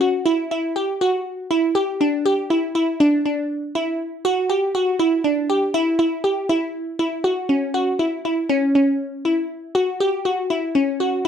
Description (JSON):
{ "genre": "progressive instrumental, progressive", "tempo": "240 BPM (eighths)", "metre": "11/8", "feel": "straight", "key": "unclear", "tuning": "A4 = 440 Hz", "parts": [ { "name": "glassy wavetable pluck", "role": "solo", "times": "0.0-11.3 s", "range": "C#4 to G4", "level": "-18 LUFS", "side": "equal", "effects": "chorus" } ], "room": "wet studio reverb, RT60 0.6 s", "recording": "none", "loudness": "-18 LUFS", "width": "side -8 dB against mid", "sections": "0.0-7.0 A section; 7.0-11.3 B section", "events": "none", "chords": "none" }